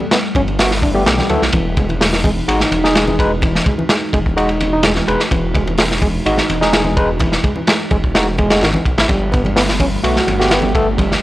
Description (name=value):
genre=breakbeat, breaks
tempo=127 BPM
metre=4/4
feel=straight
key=E major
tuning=A4 = 440 Hz
part: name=warbly tape-like pad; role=sustained chords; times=0.0-11.2 s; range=E3 to A4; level=-24 LUFS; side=equal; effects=chorus, built-in reverb, sidechain pumping
part: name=overdriven reed electric piano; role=riff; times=0.0-11.2 s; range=D#3 to G4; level=-20 LUFS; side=right 1 dB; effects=tube saturation, tape echo
part: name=congas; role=percussion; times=0.0-11.1 s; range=none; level=-26 LUFS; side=left 1 dB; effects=none
part: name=crunchy breakbeat drum kit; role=drums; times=0.1-11.2 s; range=hi-hat, kick drum, ride cymbal, snare drum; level=-16 LUFS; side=equal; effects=none
part: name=detuned saw bass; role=bass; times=0.3-11.1 s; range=E1 to D2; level=-21 LUFS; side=equal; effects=none
part: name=overdriven tine electric piano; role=stabs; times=0.6-10.9 s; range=G#3 to B4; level=-20 LUFS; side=left 1 dB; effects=vintage 12-bit sampler grit, tape echo
part: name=swell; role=sound effects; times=0.8-1.5 s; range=none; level=-29 LUFS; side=right 1 dB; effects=none
room=studio reverb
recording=dry, gritty hardware recording, transformer saturation, cassette tape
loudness=-13 LUFS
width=side -16 dB against mid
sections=0.0-11.2 A section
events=none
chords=0.0 Gmaj9; 1.5 Emaj9; 9.1 Gmaj9